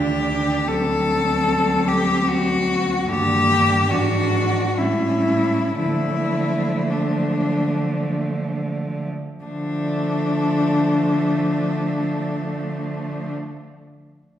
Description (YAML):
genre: classical, lyrical piece for cello ensemble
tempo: 44-76 BPM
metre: 3/4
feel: rubato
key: D minor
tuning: A4 = 440 Hz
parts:
  - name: rich cello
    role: melody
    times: 0.0-13.3 s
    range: D4 to A4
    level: -22 LUFS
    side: left 3 dB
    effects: none
  - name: rich cello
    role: second line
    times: 0.0-13.3 s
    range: A3 to D4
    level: -26 LUFS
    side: right 4 dB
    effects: none
  - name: rich cello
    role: accompaniment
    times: 0.0-13.3 s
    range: D3 to G3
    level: -27 LUFS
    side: left 1 dB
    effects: none
  - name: rich cello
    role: bass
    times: 0.0-13.3 s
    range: D2 to D3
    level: -26 LUFS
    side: right 2 dB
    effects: none
room: wet recital hall reverb, RT60 1.7 s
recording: heard from further back in the room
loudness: -18 LUFS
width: side -10 dB against mid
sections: 0.0-9.4 A section; 9.4-13.4 B section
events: slowing down 1.9-9.4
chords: 0.0 N.C.; 0.7 D7; 3.1 Gm; 3.9 E7/G#; 4.8 A7; 5.8 Dm